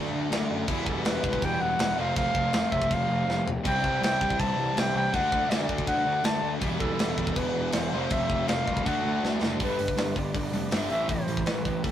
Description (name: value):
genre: punk rock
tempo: 161 BPM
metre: 4/4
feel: straight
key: unclear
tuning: A4 = 442 Hz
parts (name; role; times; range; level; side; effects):
- cranked stack guitar; riff; 0.0-11.9 s; G2 to F#4; -35 LUFS; left 5 dB; overdrive
- fuzz guitar; riff; 0.0-11.9 s; G2 to G4; -36 LUFS; equal; none
- sludgy distorted guitar; riff; 0.0-11.9 s; E2 to D4; -33 LUFS; right 4 dB; overdrive
- fuzz picked electric bass; bass; 0.0-11.9 s; E1 to F#2; -33 LUFS; equal; overdrive
- tight metal drum kit; drums; 0.3-11.9 s; crash cymbal, hi-hat, kick drum, snare drum, toms; -30 LUFS; equal; none
- mellow clarinet; melody; 0.9-11.9 s; A4 to A5; -29 LUFS; equal; none
room: light reverb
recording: rough rehearsal-room recording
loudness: -24 LUFS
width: side -10 dB against mid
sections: 0.0-9.6 A section; 9.6-11.9 B section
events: drum fill 3.3-3.7, 9.2-9.6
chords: 0.0 D; 0.7 Em; 2.0 F; 3.7 C; 5.1 D; 6.6 Em; 7.9 F; 8.9 D; 9.6 G; 10.9 Am